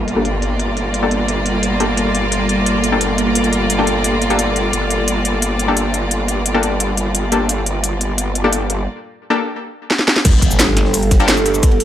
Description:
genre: dark technical drum and bass.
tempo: 174 BPM.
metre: 4/4.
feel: straight.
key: G minor.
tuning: A4 = 441 Hz.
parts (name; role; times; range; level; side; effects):
dark analog pad; sustained chords; 0.0-11.8 s; G3 to A4; -23 LUFS; right 1 dB; chorus, sidechain pumping.
growl bass; bass; 0.0-11.8 s; G1; -20 LUFS; equal; chorus, overdrive, sidechain pumping.
impact; sound effects; 0.0-0.6, 10.2-11.6 s; none; -21 LUFS; equal; none.
clear studio string section; texture; 0.0-8.9 s; Bb3 to D5; -21 LUFS; equal; sidechain pumping.
drum and bass drum kit; drums; 0.1-11.8 s; cabasa, crash cymbal, hi-hat, snare drum; -17 LUFS; left 1 dB; low-pass filter on snare, low-pass filter on hats, low-pass filter on cymbals, low-pass filter on perc, low-pass filter on toms.
orchestra-hit-like synth stab; stabs; 0.2-11.3 s; Bb3 to A4; -20 LUFS; left 2 dB; built-in reverb, tape echo.
electronic kick drum; drums; 10.2-11.7 s; none; -12 LUFS; equal; none.
jungle sampler-style drum kit; drums; 10.2-11.8 s; hi-hat, ride cymbal, snare drum; -27 LUFS; right 1 dB; none.
room: moderate plate reverb, RT60 1.3 s.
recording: none.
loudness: -14 LUFS.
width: side -11 dB against mid.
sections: 0.0-10.2 A section; 10.2-11.8 B section.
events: impact 0.0-0.6, 10.2-11.6; filter sweep on drum 0.0-10.2; filter sweep on synth stab 0.0-10.2; drum fill 9.9-10.2; drop 10.2-11.8.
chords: 0.0 Gmadd9.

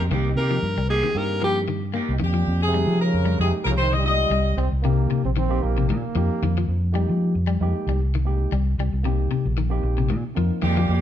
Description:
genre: afrobeat.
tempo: 114 BPM.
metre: 4/4.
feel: swing 54% on 16ths.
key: F minor.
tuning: A4 = 441 Hz.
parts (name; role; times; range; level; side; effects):
electric guitar at the edge of break-up; arpeggios; 0.0-11.0 s; C3 to Bb3; -27 LUFS; left 8 dB; none.
fingered electric bass; bass; 0.0-11.0 s; Bb1 to F3; -22 LUFS; equal; none.
tine electric piano; accompaniment; 0.1-10.6 s; Ab3 to Bb4; -31 LUFS; right 3 dB; overdrive.
electric guitar at the edge of break-up; stabs; 0.1-2.1, 10.6-11.0 s; Ab3 to G4; -30 LUFS; right 3 dB; none.
clear alto saxophone; melody; 0.4-1.6 s; G4 to Bb4; -25 LUFS; left 1 dB; none.
warm horn section; melody; 2.2-4.5, 10.6-11.0 s; G4 to Eb5; -24 LUFS; equal; none.
warm trombone; second line; 2.3-4.6, 10.7-11.0 s; Bb2 to G3; -30 LUFS; right 4 dB; none.
warm bass trombone; second line; 4.6-6.9 s; Bb3 to C4; -29 LUFS; right 7 dB; none.
room: moderate stone room reverb, RT60 1.2 s.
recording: band playing live in one room.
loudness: -20 LUFS.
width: side -10 dB against mid.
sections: 0.0-2.2 A section; 2.2-11.0 B section.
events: alto saxophone solo 0.0-2.2.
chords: 0.1 Cm7; 2.2 Fm11; 4.3 Cm7; 6.4 Fm11; 8.5 Cm7.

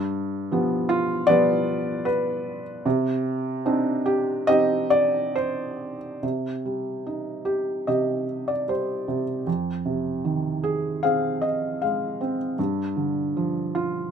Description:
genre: classical, lyrical solo piano.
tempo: 67-80 BPM.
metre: 4/4.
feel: rubato.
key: C harmonic minor.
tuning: A4 = 440 Hz.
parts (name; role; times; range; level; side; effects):
felt-muted upright piano; solo; 0.0-14.1 s; F2 to F5; -22 LUFS; right 1 dB; none.
room: moderate studio reverb, RT60 0.6 s.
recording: minimal, uncompressed stereo recording.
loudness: -22 LUFS.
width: side -7 dB against mid.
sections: 0.0-6.2 A section; 6.2-14.1 B section.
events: none.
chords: 0.0 G7; 2.9 Cmadd9; 9.5 Fm7; 12.6 G7(no3).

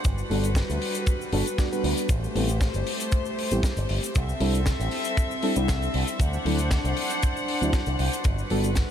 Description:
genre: nu-disco, nu disco.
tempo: 117 BPM.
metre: 4/4.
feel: swing 54% on 16ths.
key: D mixolydian.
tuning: A4 = 440 Hz.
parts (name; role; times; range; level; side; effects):
clear studio string section; sustained chords; 0.0-8.9 s; G3 to F#5; -30 LUFS; left 1 dB; sidechain pumping.
picked electric bass with an envelope filter; bass; 0.0-8.8 s; G1 to D2; -27 LUFS; equal; tube saturation.
kick drum; drums; 0.0-8.9 s; none; -24 LUFS; equal; none.
tight funk drum kit; drums; 0.0-8.9 s; hi-hat, snare drum; -34 LUFS; left 3 dB; none.
cabasa; percussion; 0.0-8.9 s; none; -41 LUFS; left 5 dB; none.
reed electric piano; accompaniment; 0.3-8.7 s; F#3 to D5; -30 LUFS; equal; lush chorus, sidechain pumping, low-pass filter, diffuse ambient delay.
room: light reverb, small room reverb.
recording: none.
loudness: -23 LUFS.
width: side -9 dB against mid.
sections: 0.0-8.9 A section.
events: filter sweep on reed electric piano 0.0-8.9.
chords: 0.0 Gmaj7; 2.1 Am7; 4.1 C6; 6.2 D7; 8.2 Gmaj7.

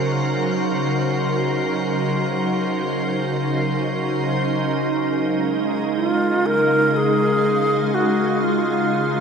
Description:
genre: ambient.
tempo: free time.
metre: none.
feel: none.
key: Db major.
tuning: A4 = 440 Hz.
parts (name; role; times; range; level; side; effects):
soft additive organ-like pad; sustained chords; 0.0-9.2 s; Db3 to F5; -20 LUFS; right 1 dB; ensemble chorus, built-in reverb.
drifting glass-harmonics texture; texture; 0.0-4.5 s; C5 to C6; -30 LUFS; left 1 dB; chorus, built-in reverb.
bright alto flute; melody; 6.0-9.2 s; F4 to Bb4; -18 LUFS; equal; ping-pong delay.
room: wet huge ambient reverb, RT60 8.9 s.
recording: none.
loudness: -18 LUFS.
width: side -6 dB against mid.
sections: 0.0-4.5 A section; 4.5-9.2 B section.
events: none.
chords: 0.0 Gb/Db; 4.5 Db.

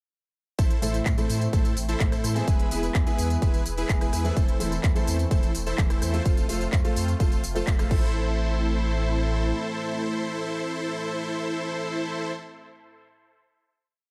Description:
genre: EDM, festival progressive house.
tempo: 127 BPM.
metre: 4/4.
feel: straight.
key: A harmonic minor.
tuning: A4 = 440 Hz.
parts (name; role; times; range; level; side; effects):
lush unison pad; sustained chords; 0.6-12.3 s; A2 to B4; -39 LUFS; equal; chorus, phaser, sidechain pumping.
dense compressed supersaw; riff; 0.6-12.3 s; E4 to C5; -33 LUFS; equal; sidechain pumping, dub echo.
saturated sub bass; bass; 0.6-9.5 s; E1 to A2; -30 LUFS; equal; sidechain pumping.
electronic kick drum; drums; 0.6-8.0 s; none; -26 LUFS; equal; none.
pop drum kit; drums; 0.6-8.0 s; crash cymbal, handclaps, hi-hat, rim click, tambourine; -37 LUFS; equal; none.
dark grand piano; accompaniment; 0.8-12.3 s; A2 to A4; -35 LUFS; equal; vintage 12-bit sampler grit, sidechain pumping, dub echo.
room: digital ambience.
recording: none.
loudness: -25 LUFS.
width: mono.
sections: 0.6-8.1 drop; 8.1-11.9 final hit.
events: drop 0.6-8.1; band accent 7.7.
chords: 0.6 Am; 2.5 E; 4.4 Am/E; 6.3 F; 7.9 Am.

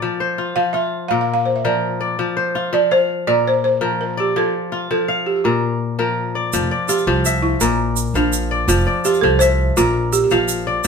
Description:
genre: west african traditional, West African string and xylophone music.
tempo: 111 BPM (dotted quarters).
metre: 12/8.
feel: straight.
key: unclear.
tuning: A4 = 442 Hz.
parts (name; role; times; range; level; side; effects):
kora; arpeggios; 0.0-10.9 s; Bb2 to F5; -20 LUFS; left 4 dB; none.
balafon; melody; 0.6-10.6 s; D4 to F5; -18 LUFS; right 2 dB; none.
upright bass; bass; 6.5-10.9 s; F1 to C2; -21 LUFS; right 1 dB; none.
egg shaker; percussion; 6.5-10.9 s; none; -24 LUFS; right 7 dB; none.
room: moderate studio reverb, RT60 0.7 s.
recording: band playing live in one room.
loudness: -16 LUFS.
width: side -6 dB against mid.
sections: 0.0-6.5 A section; 6.5-10.9 B section.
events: balafon solo 6.5-10.9.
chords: 0.0 F5; 1.1 Bb; 2.2 F5; 3.3 Bb; 4.4 F; 5.4 Bb; 6.5 F5; 7.6 Bb; 8.7 F5; 9.8 Bb.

